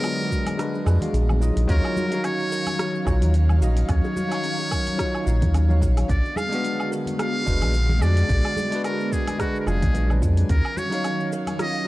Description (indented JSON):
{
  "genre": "sunset chillout",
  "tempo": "109 BPM",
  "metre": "4/4",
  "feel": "swing 56% on 16ths",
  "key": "Eb minor",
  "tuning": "A4 = 441 Hz",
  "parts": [
    { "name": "trumpet with metal mute", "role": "melody", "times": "0.0-11.9 s", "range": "Gb4 to F5", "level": "-29 LUFS", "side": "equal", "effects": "tape echo" },
    { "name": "barky tine electric piano", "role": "accompaniment", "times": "0.0-11.9 s", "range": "Gb3 to F5", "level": "-28 LUFS", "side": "equal", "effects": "auto-pan" },
    { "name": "airy breathy pad", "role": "sustained chords", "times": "0.0-11.9 s", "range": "D3 to F5", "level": "-32 LUFS", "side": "left 2 dB", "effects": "chorus, phaser, vintage 12-bit sampler grit" },
    { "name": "buzzing kalimba", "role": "arpeggios", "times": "0.0-11.8 s", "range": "Db4 to Cb5", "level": "-34 LUFS", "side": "right 4 dB", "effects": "analog delay" },
    { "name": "deep house drum kit", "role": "drums", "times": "0.0-11.8 s", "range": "hi-hat, rim click, shaker, woodblock", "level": "-34 LUFS", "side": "right 1 dB", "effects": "studio reverb" },
    { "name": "bongos and congas", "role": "percussion", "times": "0.2-11.6 s", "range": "none", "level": "-33 LUFS", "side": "left 1 dB", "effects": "none" },
    { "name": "electronic kick drum", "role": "drums", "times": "0.3-10.6 s", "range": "none", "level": "-25 LUFS", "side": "equal", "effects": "studio reverb" },
    { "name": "round analog bass", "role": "bass", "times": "0.9-10.6 s", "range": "F1 to F2", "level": "-19 LUFS", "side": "equal", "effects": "none" }
  ],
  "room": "digital ambience",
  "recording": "dry, gritty hardware recording",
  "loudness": "-20 LUFS",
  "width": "side -18 dB against mid",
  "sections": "0.0-1.7 A section; 1.7-11.9 A section",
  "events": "kick drops out 0.6-1.7",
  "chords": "0.0 Bb7b9b13; 1.7 Ebm9; 6.1 Bb7b9b13; 10.5 Ebm9"
}